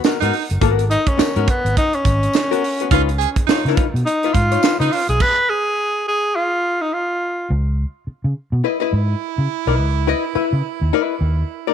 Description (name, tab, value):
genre	funk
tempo	105 BPM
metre	4/4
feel	swing 60% on 16ths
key	unclear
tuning	A4 = 440 Hz
part	archtop guitar, miked and amplified	accompaniment	0.0-4.9, 8.6-11.7 s	B3 to E5	-21 LUFS	left 12 dB	none
part	tight funk drum kit	drums	0.0-5.4 s	crash cymbal, hi-hat, kick drum, snare drum	-19 LUFS	right 3 dB	none
part	tambourine	percussion	0.0-4.8 s	none	-33 LUFS	left 15 dB	none
part	breathy baritone saxophone	second line	0.2-5.0, 8.6-11.7 s	D#4 to G#4	-24 LUFS	right 14 dB	none
part	vintage muted fingered electric bass	bass	0.2-11.4 s	F#1 to C#3	-18 LUFS	equal	none
part	breathy tenor saxophone	melody	0.9-7.5 s	B3 to B4	-18 LUFS	equal	none
room	moderate spring reverb, RT60 1.7 s, studio reverb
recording	1960s-style stereo with parts hard left and right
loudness	-16 LUFS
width	side -8 dB against mid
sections	0.0-7.5 A section; 7.5-11.7 B section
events	tenor saxophone solo 0.0-7.5; stop 5.2-7.5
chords	0.0 G#m9; 2.9 C#9; 7.5 C#m9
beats	0.04 | 0.62 1.19 1.76 2.34 | 2.91 3.48 4.06 4.63 | 5.20 5.77 6.35 6.92 | 7.49 8.06 8.64 9.21 | 9.78 10.35 10.92 11.49